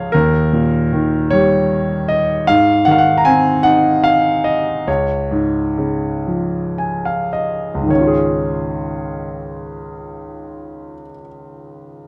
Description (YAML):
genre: classical, lyrical solo piano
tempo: 34-52 BPM (dotted quarters)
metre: 6/8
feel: rubato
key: Db major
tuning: A4 = 440 Hz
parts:
  - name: clear concert grand piano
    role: solo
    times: 0.0-12.1 s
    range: Db2 to Bb5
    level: -17 LUFS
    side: equal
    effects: none
room: light reverb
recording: dark, warm production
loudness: -16 LUFS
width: mono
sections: 0.0-7.9 A section; 7.9-11.3 B section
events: slowing down 2.5-7.9; grand piano fill 6.3-7.9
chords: 0.1 Eb7; 2.5 Ab; 4.9 Db